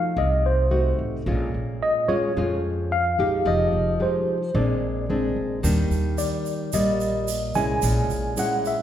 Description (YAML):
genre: bossa nova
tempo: 110 BPM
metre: 4/4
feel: straight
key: unclear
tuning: A4 = 441 Hz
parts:
  - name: mellow tine electric piano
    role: melody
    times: 0.0-8.8 s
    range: C5 to Ab5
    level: -25 LUFS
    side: equal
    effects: medium stereo tremolo
  - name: nylon-string guitar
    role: accompaniment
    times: 0.0-8.8 s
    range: F2 to G4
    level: -25 LUFS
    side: left 1 dB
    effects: none
  - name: upright bass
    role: bass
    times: 0.2-8.4 s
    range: F1 to F2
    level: -26 LUFS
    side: right 1 dB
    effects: none
  - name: tube shaker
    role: percussion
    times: 5.6-8.8 s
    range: none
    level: -35 LUFS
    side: right 6 dB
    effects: none
room: wet recital hall reverb, RT60 1.5 s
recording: recorded in a church or concert hall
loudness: -21 LUFS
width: side -10 dB against mid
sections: 0.0-8.8 A section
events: none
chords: 0.0 F7b9 (rootless); 1.3 Bbm7; 3.5 Fm9; 4.5 Bb9; 5.6 Ebmaj7; 7.8 Bbm7b5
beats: 0.17 0.71 | 1.26 1.81 2.36 2.90 | 3.45 4.00 4.55 5.09 | 5.64 6.19 6.74 7.29 | 7.83 8.38